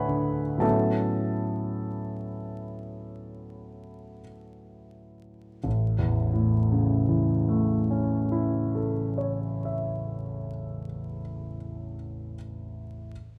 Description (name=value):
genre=classical, impressionist solo piano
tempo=41-58 BPM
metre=4/4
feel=rubato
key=A major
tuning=A4 = 440 Hz
part: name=warm concert grand piano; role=solo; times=0.0-13.1 s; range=A1 to C#6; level=-29 LUFS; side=equal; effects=none
room=moderate scoring stage reverb, RT60 1.7 s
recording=close, detailed microphones, vinyl crackle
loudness=-28 LUFS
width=mono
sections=0.0-5.6 A section; 5.6-10.9 B section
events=slowing down 0.0-5.6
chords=0.0 Dmaj7; 0.6 A69; 5.6 A